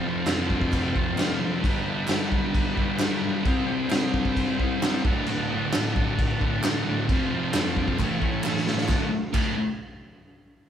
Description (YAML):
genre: garage rock duo or trio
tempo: 132 BPM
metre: 4/4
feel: straight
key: unclear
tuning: A4 = 439 Hz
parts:
  - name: combo organ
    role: sustained chords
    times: 0.0-9.1 s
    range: D4 to A5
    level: -35 LUFS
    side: right 1 dB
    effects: none
  - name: thick fuzz guitar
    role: riff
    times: 0.0-9.5 s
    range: D2 to C4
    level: -26 LUFS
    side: left 1 dB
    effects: distortion
  - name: raw garage drum kit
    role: drums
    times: 0.3-9.5 s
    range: crash cymbal, kick drum, snare drum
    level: -26 LUFS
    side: equal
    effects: none
  - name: group handclap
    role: percussion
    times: 0.3-9.6 s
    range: none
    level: -39 LUFS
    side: right 2 dB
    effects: none
room: moderate stone room reverb, RT60 1.0 s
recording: band playing live in one room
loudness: -22 LUFS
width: side -9 dB against mid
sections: 0.0-8.9 A section; 8.9-10.7 B section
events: transistor combo organ fill 0.7-1.6; drum fill 8.4-8.9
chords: 0.0 F; 1.6 G; 3.5 C; 5.0 D; 7.1 F; 8.0 A; 8.9 D5